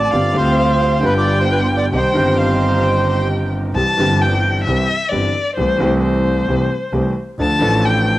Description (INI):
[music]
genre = tango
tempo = 132 BPM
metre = 4/4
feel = rubato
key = C minor, C major from 3.8 s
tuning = A4 = 438 Hz
[part]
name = bandoneon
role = melody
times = 0.0-3.3 s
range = B4 to D5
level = -18 LUFS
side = right 1 dB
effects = cassette tape
[part]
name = warm violin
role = second line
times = 0.0-8.2 s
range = C5 to A5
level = -20 LUFS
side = left 2 dB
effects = none
[part]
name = clear concert grand piano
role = accompaniment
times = 0.0-8.2 s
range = G1 to A4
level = -20 LUFS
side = equal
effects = none
[part]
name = dark studio string section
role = stabs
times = 0.0-3.7 s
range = B3 to G4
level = -24 LUFS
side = right 2 dB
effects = none
[part]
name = clear double bass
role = bass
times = 0.0-8.2 s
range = G1 to D2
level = -19 LUFS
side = equal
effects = none
[sound]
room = light reverb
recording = home recording on cassette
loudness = -14 LUFS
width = side -16 dB against mid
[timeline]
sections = 0.0-3.8 A section; 3.8-8.2 B section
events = violin solo 3.8-8.2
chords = 0.1 G7sus4; 1.0 G7; 1.9 Cm; 3.8 C; 5.6 Am7/C; 7.4 Dm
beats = | 0.11 0.57 1.02 1.47 | 1.92 2.38 2.83 3.29 | 3.75 4.21 4.66 5.12 | 5.57 6.02 6.47 6.92 | 7.37 7.83